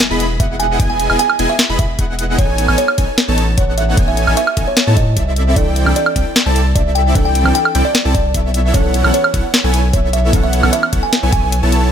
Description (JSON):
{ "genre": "future bass", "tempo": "151 BPM", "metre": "4/4", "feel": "half-time", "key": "unclear", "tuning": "A4 = 441 Hz", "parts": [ { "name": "trap drum kit", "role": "drums", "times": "0.0-11.8 s", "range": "hi-hat, snare drum, woodblock", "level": "-16 LUFS", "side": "equal", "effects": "none" }, { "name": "impact", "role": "sound effects", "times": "0.0-0.8 s", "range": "none", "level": "-34 LUFS", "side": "left 1 dB", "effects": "none" }, { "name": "airy dreamy lead", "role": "arpeggios", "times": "0.1-11.9 s", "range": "E5 to B5", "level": "-24 LUFS", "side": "left 1 dB", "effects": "chorus, sidechain pumping, tape echo" }, { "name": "supersaw chords", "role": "riff", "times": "0.1-11.9 s", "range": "B3 to B5", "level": "-20 LUFS", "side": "equal", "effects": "sidechain pumping" }, { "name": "saturated sub bass", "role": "bass", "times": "0.1-11.9 s", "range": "E1 to A2", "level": "-16 LUFS", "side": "equal", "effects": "sidechain pumping" }, { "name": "kalimba", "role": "melody", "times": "0.4-11.5 s", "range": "C#5 to G#5", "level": "-20 LUFS", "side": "right 2 dB", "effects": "sidechain pumping, tape echo" }, { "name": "electronic kick drum", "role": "drums", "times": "0.4-11.4 s", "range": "none", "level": "-16 LUFS", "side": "equal", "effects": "none" }, { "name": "soft round pluck", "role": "accompaniment", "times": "5.6-11.9 s", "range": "E3 to A4", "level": "-24 LUFS", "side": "right 3 dB", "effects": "ensemble chorus, sidechain pumping, tape echo" } ], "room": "little or no reverb", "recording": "none", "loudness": "-12 LUFS", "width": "side -8 dB against mid", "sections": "0.0-11.9 A section", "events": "drop 0.0-11.9; impact 0.0-0.8; kick drops out 11.5-11.9", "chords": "0.0 Emaj7; 2.4 Amaj9#11; 5.4 C69; 8.5 B9sus4" }